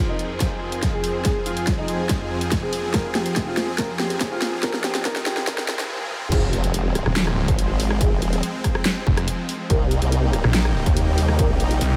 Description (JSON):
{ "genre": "heavy wobble dubstep", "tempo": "142 BPM", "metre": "4/4", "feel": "half-time", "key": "F minor", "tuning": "A4 = 439 Hz", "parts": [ { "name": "supersaw chords", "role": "sustained chords", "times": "0.0-12.0 s", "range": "F2 to Ab4", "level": "-31 LUFS", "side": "equal", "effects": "analog chorus, sidechain pumping" }, { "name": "riser and impact", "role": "sound effects", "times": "0.0-8.0 s", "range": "none", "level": "-39 LUFS", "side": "equal", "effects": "none" }, { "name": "airy breathy pad", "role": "texture", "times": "0.0-5.9, 9.7-12.0 s", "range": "Eb4 to Ab5", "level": "-35 LUFS", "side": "equal", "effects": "chorus, sidechain pumping" }, { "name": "warm baby grand piano", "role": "melody", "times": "0.1-5.8 s", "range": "Eb4 to Bb4", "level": "-33 LUFS", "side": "equal", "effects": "tape echo" }, { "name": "dubstep drum kit", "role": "drums", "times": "0.2-11.9 s", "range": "crash cymbal, handclaps, hi-hat, rim click, snare drum, toms", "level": "-29 LUFS", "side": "equal", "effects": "none" }, { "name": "electronic kick drum", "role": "drums", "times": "0.4-11.5 s", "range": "none", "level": "-26 LUFS", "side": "equal", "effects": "distortion" }, { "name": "dark brass ensemble", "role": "stabs", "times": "6.3-11.5 s", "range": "C4 to Bb4", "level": "-36 LUFS", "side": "equal", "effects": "none" }, { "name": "formant-sweep wobble bass", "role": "bass", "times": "6.3-11.8 s", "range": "Eb1 to Eb2", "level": "-24 LUFS", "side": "equal", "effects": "chorus, overdrive" }, { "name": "snarling distorted saw bass", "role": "bass", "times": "7.1-12.0 s", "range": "Eb1 to C2", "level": "-23 LUFS", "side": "equal", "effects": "distortion, overdrive" } ], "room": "moderate huge ambient reverb, RT60 9.1 s", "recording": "dreamy mix soaked in reverb, high-pass filter", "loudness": "-22 LUFS", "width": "mono", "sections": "0.0-6.3 A section; 6.3-12.0 B section", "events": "build-up 0.0-6.3; drum fill 0.0-5.9, 6.0-6.3; filter sweep 0.0-6.3; break 5.9-6.3; drop 6.3-12.0; impact 6.3-8.0", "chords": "0.0 Fm; 9.7 Cm7" }